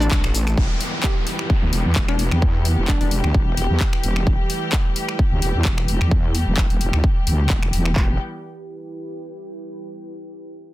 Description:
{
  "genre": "bass house",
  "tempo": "130 BPM",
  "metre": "4/4",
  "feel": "swing 54% on 16ths",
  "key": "E minor",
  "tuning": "A4 = 439 Hz",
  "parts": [
    { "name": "hollow square pluck", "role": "melody", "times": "0.0-3.1 s", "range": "D4 to G4", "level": "-29 LUFS", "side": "left 2 dB", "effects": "chorus, tape echo" },
    { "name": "clear symphonic string section", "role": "sustained chords", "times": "0.0-8.2 s", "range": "E3 to A4", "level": "-29 LUFS", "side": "left 2 dB", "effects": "sidechain pumping, low-pass filter" },
    { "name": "wobble bass", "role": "bass", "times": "0.0-8.2 s", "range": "E1 to E2", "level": "-20 LUFS", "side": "equal", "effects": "chorus, overdrive, sidechain pumping" },
    { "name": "house drum kit", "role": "drums", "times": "0.0-7.9 s", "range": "finger snaps, handclaps, hi-hat, shaker", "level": "-26 LUFS", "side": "left 1 dB", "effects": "overdrive" },
    { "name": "big-room dance drum kit", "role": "drums", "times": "0.1-8.1 s", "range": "handclaps, kick drum", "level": "-19 LUFS", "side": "equal", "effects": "none" },
    { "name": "downlifter", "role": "sound effects", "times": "0.6-4.3 s", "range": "none", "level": "-32 LUFS", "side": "equal", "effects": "none" },
    { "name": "deep dark ambient pad", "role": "texture", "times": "1.5-9.8 s", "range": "E4 to A5", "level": "-35 LUFS", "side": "right 5 dB", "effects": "chorus, built-in reverb, sidechain pumping" }
  ],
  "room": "digital ambience",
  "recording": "dense, heavily limited modern master",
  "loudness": "-17 LUFS",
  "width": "side -16 dB against mid",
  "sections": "0.6-8.0 A section; 8.0-9.8 B section",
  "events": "band accent 0.1; fade-out on ambient pad 0.6-8.0; filter sweep on wobble bass 0.6-8.0",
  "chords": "0.0 Am; 0.6 Em"
}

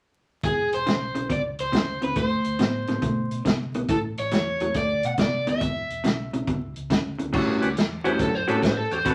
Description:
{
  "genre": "electric blues shuffle",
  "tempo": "139 BPM",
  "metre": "4/4",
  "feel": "swing 67% on 8ths",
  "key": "A mixolydian",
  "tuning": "A4 = 440 Hz",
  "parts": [
    { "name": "electric guitar through a small old amp", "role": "riff", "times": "0.4-9.1 s", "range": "E2 to B4", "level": "-29 LUFS", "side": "equal", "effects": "none" },
    { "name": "hollow-body short-scale fingered electric bass", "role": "bass", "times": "0.4-9.1 s", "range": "E1 to C3", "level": "-37 LUFS", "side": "equal", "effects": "none" },
    { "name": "vintage drum kit", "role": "drums", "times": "0.4-9.1 s", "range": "crash cymbal, hi-hat, kick drum, snare drum", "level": "-29 LUFS", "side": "equal", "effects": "none" },
    { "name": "overdriven semi-hollow guitar", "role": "melody", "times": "0.5-9.1 s", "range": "G#4 to F#5", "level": "-29 LUFS", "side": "equal", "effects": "none" },
    { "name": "tonewheel organ", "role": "accompaniment", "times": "7.6-9.0 s", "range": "C#4 to B4", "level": "-33 LUFS", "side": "equal", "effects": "overdrive, slow rotary speaker" }
  ],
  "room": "moderate club reverb, RT60 0.8 s",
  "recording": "vinyl crackle",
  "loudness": "-25 LUFS",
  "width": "mono",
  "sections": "0.4-7.3 A section; 7.3-9.1 B section",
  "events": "overdriven electric guitar solo 7.3-9.1",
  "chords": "0.4 E5; 2.2 D5; 3.9 A; 4.8 D5; 5.6 E5; 7.3 A13"
}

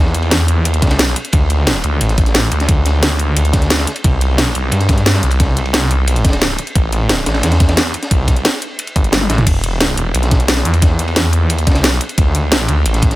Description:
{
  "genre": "dark technical drum and bass",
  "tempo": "177 BPM",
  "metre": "4/4",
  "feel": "straight",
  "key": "E minor",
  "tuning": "A4 = 440 Hz",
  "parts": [
    { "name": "snarling distorted saw bass", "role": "bass", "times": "0.0-13.2 s", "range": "E1 to G2", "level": "-14 LUFS", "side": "equal", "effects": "distortion, tube saturation" },
    { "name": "crunchy breakbeat drum kit", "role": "drums", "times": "0.1-13.2 s", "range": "ride cymbal, snare drum", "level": "-23 LUFS", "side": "equal", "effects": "high-pass filter on cymbals, high-pass filter on snare, high-pass filter on room" },
    { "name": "drum and bass drum kit", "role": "drums", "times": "0.1-13.2 s", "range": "crash cymbal, hi-hat, snare drum, toms", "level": "-16 LUFS", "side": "equal", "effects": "none" },
    { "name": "electronic kick drum", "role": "drums", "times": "0.8-13.1 s", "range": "none", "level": "-13 LUFS", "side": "equal", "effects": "none" }
  ],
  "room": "digital ambience",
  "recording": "none",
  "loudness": "-12 LUFS",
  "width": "side -17 dB against mid",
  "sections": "0.0-13.2 A section",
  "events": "kick drops out 9.1-9.5; drum fill 9.1-9.5",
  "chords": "none"
}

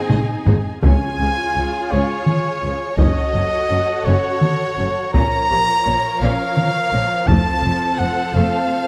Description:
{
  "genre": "cinematic, epic orchestral film score",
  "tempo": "56 BPM (dotted quarters)",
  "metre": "6/8",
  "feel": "straight",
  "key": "Db major",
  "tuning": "A4 = 440 Hz",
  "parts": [
    { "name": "warm symphonic violin section", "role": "second line", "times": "0.0-8.9 s", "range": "F#4 to D#5", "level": "-33 LUFS", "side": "equal", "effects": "none" },
    { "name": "dark symphonic viola section", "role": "accompaniment", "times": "0.0-8.9 s", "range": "C3 to G#4", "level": "-29 LUFS", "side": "equal", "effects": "none" },
    { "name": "dark symphonic string section", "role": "sustained chords", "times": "0.0-8.9 s", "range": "F3 to A5", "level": "-30 LUFS", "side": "equal", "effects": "none" },
    { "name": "rich symphonic cello section", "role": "bass", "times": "0.1-8.4 s", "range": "Db2 to Bb2", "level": "-26 LUFS", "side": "equal", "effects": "none" },
    { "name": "warm symphonic double bass section", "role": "bass", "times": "0.1-8.4 s", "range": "F1 to Db2", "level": "-27 LUFS", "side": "equal", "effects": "none" },
    { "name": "taiko ensemble", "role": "drums", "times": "0.1-7.9 s", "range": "none", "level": "-21 LUFS", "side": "equal", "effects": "none" },
    { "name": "clear studio violin section", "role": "melody", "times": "0.8-8.9 s", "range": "Db5 to Bb5", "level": "-32 LUFS", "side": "equal", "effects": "none" },
    { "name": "warm trumpet", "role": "stabs", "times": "0.8-8.9 s", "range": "Db5 to Bb5", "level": "-22 LUFS", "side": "equal", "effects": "none" },
    { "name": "timpani", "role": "percussion", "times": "0.8-1.9 s", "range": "Db3", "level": "-30 LUFS", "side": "equal", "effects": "none" },
    { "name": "mellow French horn section", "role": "sustained chords", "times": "1.5-8.1 s", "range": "F3 to Db4", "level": "-42 LUFS", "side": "equal", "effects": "none" }
  ],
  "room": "light reverb",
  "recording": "close, detailed microphones",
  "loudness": "-18 LUFS",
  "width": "mono",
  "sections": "0.8-8.9 A section",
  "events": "drum fill 0.0-0.8",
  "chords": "0.0 G#; 0.8 Db; 3.0 Gbm; 5.1 Bbm; 7.3 F"
}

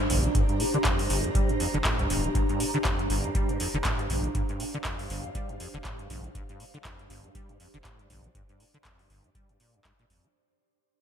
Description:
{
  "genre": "acid house",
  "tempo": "120 BPM",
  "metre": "4/4",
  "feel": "swing 57% on 16ths",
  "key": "G minor",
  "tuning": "A4 = 442 Hz",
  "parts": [
    { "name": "acid bass, saw", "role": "riff", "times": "0.0-10.3 s", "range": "G1 to G3", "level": "-32 LUFS", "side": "equal", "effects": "ensemble chorus" },
    { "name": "ethereal airy pad", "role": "texture", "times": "0.0-10.4 s", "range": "D4 to Bb5", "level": "-32 LUFS", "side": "right 1 dB", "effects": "ensemble chorus, built-in reverb, phaser, sidechain pumping" },
    { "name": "warm sub bass", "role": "bass", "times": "0.1-10.2 s", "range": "D1 to C2", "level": "-31 LUFS", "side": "equal", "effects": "tube saturation, sidechain pumping" },
    { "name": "booming analog drum machine", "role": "drums", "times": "0.1-10.3 s", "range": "handclaps, hi-hat", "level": "-32 LUFS", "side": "equal", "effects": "overdrive" },
    { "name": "electronic kick drum", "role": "drums", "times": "0.3-10.0 s", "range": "none", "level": "-30 LUFS", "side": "equal", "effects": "none" }
  ],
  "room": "moderate lush hall reverb, RT60 2.2 s",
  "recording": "bright 1980s-style digital production",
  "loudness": "-25 LUFS",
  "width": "side -8 dB against mid",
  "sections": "0.0-10.3 A section",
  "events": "fade-out 0.0-10.3",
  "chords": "0.0 Gm7"
}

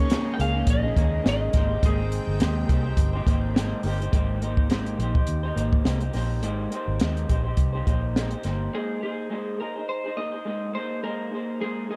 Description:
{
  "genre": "indie pop, bedroom pop",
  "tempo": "104 BPM",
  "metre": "4/4",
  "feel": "swing 55% on 16ths",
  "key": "Ab major",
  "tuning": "A4 = 439 Hz",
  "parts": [
    { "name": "electric slide guitar", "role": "melody", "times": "0.0-3.5, 8.7-12.0 s", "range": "Ab4 to G5", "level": "-34 LUFS", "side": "equal", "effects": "subtle chorus, tape echo" },
    { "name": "electric guitar through a small old amp", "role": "accompaniment", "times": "0.0-12.0 s", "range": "Eb3 to C5", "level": "-32 LUFS", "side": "equal", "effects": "lush chorus, vibrato effect" },
    { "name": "lush unison pad", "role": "sustained chords", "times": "0.0-4.1 s", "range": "C3 to G5", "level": "-39 LUFS", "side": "equal", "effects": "chorus" },
    { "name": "vintage muted fingered electric bass", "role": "bass", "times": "0.0-8.7 s", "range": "G1 to Eb2", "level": "-29 LUFS", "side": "equal", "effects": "none" },
    { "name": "compact cocktail drum kit", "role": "drums", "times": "0.1-8.6 s", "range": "hi-hat, kick drum, snare drum", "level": "-26 LUFS", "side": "equal", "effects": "none" }
  ],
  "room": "light reverb, small room ambience",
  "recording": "dark, warm production",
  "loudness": "-25 LUFS",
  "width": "mono",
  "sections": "0.0-4.1 A section; 4.1-8.7 B section; 8.7-12.0 C section",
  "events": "none",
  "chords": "0.0 Eb7sus4; 1.5 Abmaj9; 8.7 Abadd9"
}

